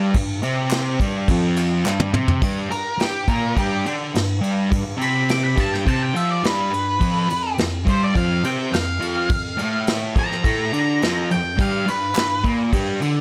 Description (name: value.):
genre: garage rock duo or trio.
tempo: 105 BPM.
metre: 4/4.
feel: straight.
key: unclear.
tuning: A4 = 440 Hz.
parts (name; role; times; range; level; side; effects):
thick fuzz guitar; riff; 0.0-13.2 s; F2 to F4; -24 LUFS; equal; distortion.
vintage brush drum kit; drums; 0.1-13.1 s; crash cymbal, kick drum, ride cymbal, snare drum, toms; -26 LUFS; equal; none.
group handclap; percussion; 0.7-2.0, 12.2-12.3 s; none; -33 LUFS; equal; none.
octave-fuzz lead guitar; melody; 2.7-12.4 s; G4 to D6; -26 LUFS; equal; distortion, tape echo.
room: light reverb.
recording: none.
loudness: -21 LUFS.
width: mono.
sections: 0.0-2.4 A section; 2.4-13.2 B section.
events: drum fill 1.9-2.4; lead electric guitar solo 2.4-13.2.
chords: 0.0 G5; 2.4 G; 7.0 F5; 11.6 G.